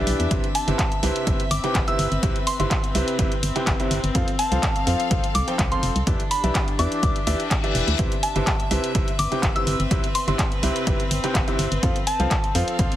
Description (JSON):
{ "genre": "piano house", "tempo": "125 BPM", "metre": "4/4", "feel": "swing 53% on 16ths", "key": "C major", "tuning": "A4 = 440 Hz", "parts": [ { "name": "clear upright piano", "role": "riff", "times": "0.0-12.9 s", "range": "C3 to G5", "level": "-27 LUFS", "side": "right 1 dB", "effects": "sidechain pumping" }, { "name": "organ-like FM bass", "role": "bass", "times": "0.0-12.9 s", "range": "E1 to F2", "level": "-24 LUFS", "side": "equal", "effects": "sidechain pumping" }, { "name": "rich chamber string section", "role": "texture", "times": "0.0-13.0 s", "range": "C4 to F5", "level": "-30 LUFS", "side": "left 2 dB", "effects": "sidechain pumping" }, { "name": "house drum kit", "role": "drums", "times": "0.1-13.0 s", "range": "handclaps, hi-hat", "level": "-28 LUFS", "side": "equal", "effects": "studio reverb" }, { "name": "electronic kick drum", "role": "drums", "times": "0.3-12.9 s", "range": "none", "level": "-24 LUFS", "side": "equal", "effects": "studio reverb" }, { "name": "soft synth bell", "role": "melody", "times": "0.5-12.6 s", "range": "A5 to E6", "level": "-27 LUFS", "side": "equal", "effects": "chorus, digital delay" }, { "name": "reverse cymbal", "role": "sound effects", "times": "7.3-8.0 s", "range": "none", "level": "-30 LUFS", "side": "left 7 dB", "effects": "none" } ], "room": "digital ambience", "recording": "heavily compressed radio sound", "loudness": "-20 LUFS", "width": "side -12 dB against mid", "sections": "0.0-13.0 A section", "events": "reverse cymbal 7.3-8.0", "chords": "0.3 Cmaj7; 4.2 F; 6.1 Em7; 8.0 Cmaj7; 11.8 F" }